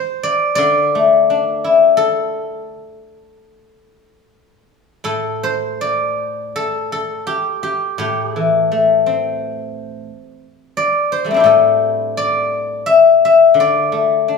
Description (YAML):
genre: chinese traditional, Chinese solo plucked strings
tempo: 73-89 BPM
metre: 4/4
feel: rubato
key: A yu mode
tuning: A4 = 440 Hz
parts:
  - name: guzheng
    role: solo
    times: 0.0-14.4 s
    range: A2 to E5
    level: -13 LUFS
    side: left 4 dB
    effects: none
room: moderate recital hall reverb, RT60 1.5 s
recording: studio ambience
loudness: -13 LUFS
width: side -5 dB against mid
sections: 0.0-5.1 A section; 5.1-14.4 B section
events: none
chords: none